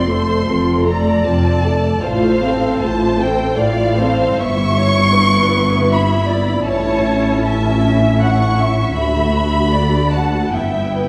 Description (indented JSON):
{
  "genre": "classical, slow romantic movement for string orchestra",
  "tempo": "78 BPM",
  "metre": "3/4",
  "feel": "rubato",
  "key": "unclear",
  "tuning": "A4 = 440 Hz",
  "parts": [
    { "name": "warm symphonic violin section", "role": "melody", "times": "0.0-11.1 s", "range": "F5 to C#6", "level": "-23 LUFS", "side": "equal", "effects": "none" },
    { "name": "rich symphonic violin section", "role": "second line", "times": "0.0-11.1 s", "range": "A4 to F#5", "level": "-23 LUFS", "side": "equal", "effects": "none" },
    { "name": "rich symphonic viola section", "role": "accompaniment", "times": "0.0-11.1 s", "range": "A3 to A4", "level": "-22 LUFS", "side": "equal", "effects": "none" },
    { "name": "rich symphonic double bass section", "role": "bass", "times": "0.0-11.1 s", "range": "F1 to D2", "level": "-23 LUFS", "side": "equal", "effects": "none" },
    { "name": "warm symphonic cello section", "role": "bass", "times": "0.0-11.1 s", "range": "D2 to A2", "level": "-22 LUFS", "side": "equal", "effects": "none" }
  ],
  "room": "wet recital hall reverb, RT60 1.7 s",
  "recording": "heard from further back in the room",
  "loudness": "-15 LUFS",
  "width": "mono",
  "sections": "0.0-11.1 A section",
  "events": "none",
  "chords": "0.0 F; 2.0 F/A; 4.4 Em/G; 6.7 A; 9.0 D; 10.5 Em/G"
}